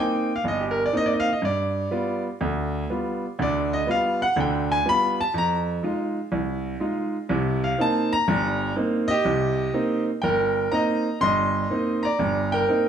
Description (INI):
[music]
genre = solo jazz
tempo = 123 BPM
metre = 4/4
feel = swing 68% on 8ths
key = C minor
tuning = A4 = 440 Hz
[part]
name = clear grand piano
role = solo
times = 0.0-12.9 s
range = G1 to C6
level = -21 LUFS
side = right 1 dB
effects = none
[sound]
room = moderate large studio reverb, RT60 0.9 s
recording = band playing live in one room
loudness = -21 LUFS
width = side -8 dB against mid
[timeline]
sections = 0.0-9.3 A section; 9.3-12.9 B section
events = grand piano solo 0.0-9.3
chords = 0.0 Cm7; 1.4 G7; 5.3 Fm7; 7.3 Cm7